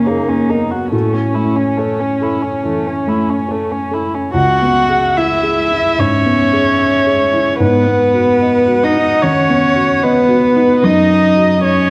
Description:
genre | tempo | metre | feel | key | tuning
neoclassical piano and strings | 73 BPM | 4/4 | uneven beats, rubato | C# minor | A4 = 440 Hz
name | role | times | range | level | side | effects
dark violin | melody | 0.0-11.9 s | A3 to F#5 | -18 LUFS | equal | none
dark cello | second line | 0.0-11.9 s | B3 to F#4 | -20 LUFS | equal | none
felt-muted upright piano | accompaniment | 0.0-11.9 s | C#2 to E5 | -19 LUFS | equal | none
rich viola | accompaniment | 0.0-11.9 s | A#3 to F#5 | -25 LUFS | equal | none
room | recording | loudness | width
wet recital hall reverb, RT60 1.5 s | dark, warm production | -14 LUFS | mono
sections
0.0-4.3 A section; 4.3-11.9 A section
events
none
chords
0.0 F#6; 0.9 A6; 4.3 C#m7; 7.6 G#m7; 10.8 F#5

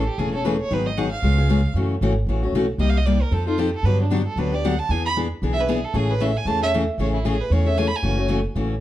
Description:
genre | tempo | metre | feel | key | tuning
acoustic string swing (jazz manouche) | 230 BPM | 4/4 | swing 57% on 8ths | A major | A4 = 440 Hz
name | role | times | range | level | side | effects
rich fiddle | melody | 0.0-8.3 s | D4 to B5 | -26 LUFS | right 4 dB | plate reverb
picked steel-string acoustic guitar | accompaniment | 0.0-8.7 s | C3 to A4 | -23 LUFS | left 3 dB | none
upright bass | bass | 0.0-8.8 s | E1 to G2 | -22 LUFS | right 1 dB | none
room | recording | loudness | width
moderate studio reverb, RT60 0.6 s | dark, warm production | -19 LUFS | side -13 dB against mid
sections
0.0-8.0 A section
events
fiddle solo 0.0-8.8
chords
0.0 Amaj7; 0.7 G#m7; 1.2 C#7; 1.8 F#m9; 2.8 Cm7; 3.3 F7; 3.9 Gmaj7; 4.9 E7; 5.9 Amaj7; 8.0 F#m7

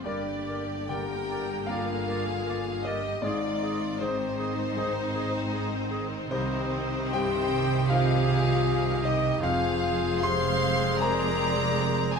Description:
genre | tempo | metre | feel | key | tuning
cinematic | 78 BPM | 4/4 | rubato | C minor | A4 = 442 Hz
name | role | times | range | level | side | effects
rich studio violin section | melody | 0.0-12.2 s | C5 to C6 | -33 LUFS | left 2 dB | none
rich symphonic violin section | second line | 0.0-12.2 s | Eb4 to F5 | -36 LUFS | left 1 dB | none
clear concert grand piano | accompaniment | 0.0-12.2 s | C2 to C6 | -33 LUFS | left 2 dB | none
rich symphonic viola section | accompaniment | 0.0-12.2 s | D3 to C4 | -37 LUFS | right 2 dB | none
warm French horn section | sustained chords | 0.0-12.2 s | C4 to C5 | -32 LUFS | left 7 dB | none
rich studio cello section | bass | 0.0-12.2 s | F2 to C3 | -34 LUFS | right 4 dB | none
warm clarinet | second line | 0.1-12.2 s | G4 to Bb4 | -36 LUFS | left 2 dB | none
warm oboe | second line | 0.1-12.2 s | C5 to Eb5 | -39 LUFS | right 3 dB | none
clear symphonic double bass section | bass | 0.1-12.2 s | F1 to C2 | -33 LUFS | right 7 dB | none
room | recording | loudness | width
moderate scoring stage reverb, RT60 1.4 s | close, detailed microphones | -25 LUFS | side -5 dB against mid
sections
0.0-12.2 A section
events
none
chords
0.1 Gm; 3.2 Ab; 6.3 Cm; 9.4 Fm

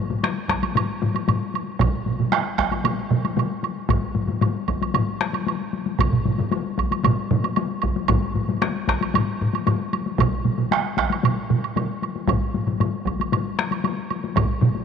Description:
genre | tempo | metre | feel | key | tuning
japanese traditional, taiko drum ensemble | 114 BPM | 4/4 | straight | none | none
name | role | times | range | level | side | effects
solo taiko drums | percussion | 0.1-14.8 s | none | -25 LUFS | left 8 dB | none
taiko ensemble | percussion | 0.1-14.7 s | none | -25 LUFS | left 3 dB | none
woodblock | percussion | 0.2-14.5 s | none | -28 LUFS | right 10 dB | none
taiko ensemble | percussion | 0.5-14.5 s | none | -27 LUFS | right 3 dB | none
taiko ensemble | percussion | 1.8-14.7 s | none | -22 LUFS | right 7 dB | none
room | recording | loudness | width
moderate plate reverb, RT60 3.8 s | 1960s-style stereo with parts hard left and right | -20 LUFS | side -7 dB against mid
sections
0.0-14.8 A section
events
none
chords
none

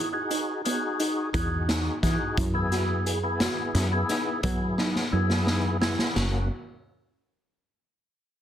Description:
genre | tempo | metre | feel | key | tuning
progressive instrumental, band music in an uneven meter | 174 BPM (eighths) | 11/8 | straight | unclear | A4 = 440 Hz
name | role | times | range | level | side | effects
percussive tonewheel organ | accompaniment | 0.0-6.5 s | A#3 to G#4 | -30 LUFS | left 2 dB | overdrive, chorus vibrato, slow rotary speaker, plate reverb
soft round pluck | arpeggios | 0.0-6.5 s | B3 to G#4 | -33 LUFS | right 3 dB | chorus, plate reverb
raw garage drum kit | drums | 0.3-6.3 s | hi-hat, kick drum, snare drum, splash cymbal | -29 LUFS | equal | none
woody fretless electric bass | bass | 1.3-6.5 s | F#1 to F#3 | -27 LUFS | equal | none
room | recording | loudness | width
moderate studio reverb, RT60 0.8 s | dense, heavily limited modern master | -24 LUFS | side -10 dB against mid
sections
0.0-6.2 A section; 6.2-8.4 B section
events
drum fill 4.8-6.2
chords
0.0 Emaj7; 2.4 F#7sus4; 6.2 F#

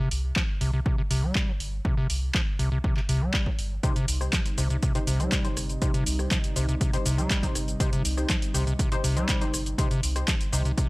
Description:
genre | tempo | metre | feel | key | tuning
acid house | 121 BPM | 4/4 | straight | C minor pentatonic | A4 = 441 Hz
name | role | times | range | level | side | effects
overdriven acid bass | riff | 0.0-10.9 s | C3 to G3 | -29 LUFS | equal | tube saturation, cassette tape, analog delay
warm sub bass | bass | 0.1-10.7 s | G1 to C2 | -28 LUFS | equal | sidechain pumping
punchy analog drum machine | drums | 0.1-10.9 s | cabasa, handclaps, hi-hat, rim click | -31 LUFS | equal | none
electronic kick drum | drums | 0.4-10.9 s | none | -27 LUFS | equal | none
warm analog pad | sustained chords | 3.8-10.9 s | C3 to Eb4 | -36 LUFS | equal | chorus, sidechain pumping
filtered dub chord stab | stabs | 3.8-10.7 s | Eb4 to C5 | -35 LUFS | left 2 dB | chorus, analog delay
room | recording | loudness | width
little or no reverb | dry, gritty hardware recording | -23 LUFS | side -22 dB against mid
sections
0.0-10.9 A section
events
none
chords
0.0 Cm

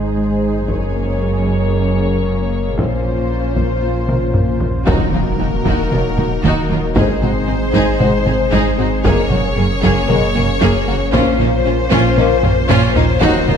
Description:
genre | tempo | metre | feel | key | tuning
cinematic, hybrid orchestral and electronic film score | 115 BPM | 4/4 | straight | Eb dorian | A4 = 440 Hz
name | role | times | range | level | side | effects
rich symphonic violin section | melody | 0.0-13.6 s | Bb4 to Db5 | -23 LUFS | left 6 dB | low-pass filter
rich symphonic violin section | second line | 0.0-13.6 s | Eb4 to Ab4 | -25 LUFS | left 2 dB | none
rich studio viola section | accompaniment | 0.0-13.6 s | Bb3 to Eb4 | -24 LUFS | right 1 dB | low-pass filter
mellow French horn section | sustained chords | 0.0-13.4 s | Gb3 to C5 | -23 LUFS | left 6 dB | low-pass filter
warm analog pad | sustained chords | 0.0-13.6 s | Ab3 to Db5 | -23 LUFS | equal | chorus, low-pass filter
glassy wavetable pluck | arpeggios | 0.0-13.6 s | Eb3 to Bb4 | -26 LUFS | left 3 dB | none
dark symphonic cello section | bass | 0.0-13.6 s | Eb2 to Bb2 | -20 LUFS | right 4 dB | none
pure sine sub bass | bass | 0.0-13.6 s | Eb1 to Bb1 | -23 LUFS | equal | none
taiko ensemble | drums | 0.7-13.6 s | none | -20 LUFS | equal | none
rich symphonic double bass section | bass | 4.9-13.6 s | Gb1 to Eb2 | -23 LUFS | right 5 dB | none
impact | sound effects | 4.9-7.0 s | none | -23 LUFS | equal | none
room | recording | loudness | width
moderate concert hall reverb, RT60 2.0 s | none | -13 LUFS | side -7 dB against mid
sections
0.0-4.9 A section; 4.9-13.6 B section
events
drum fill 4.1-4.9, 12.4-13.2; impact 4.9-7.0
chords
0.0 Ab; 0.7 Gbadd9; 2.8 Bbmadd9; 4.9 Ebm; 7.0 Ab; 9.0 Gbadd9; 11.1 Bbmadd9

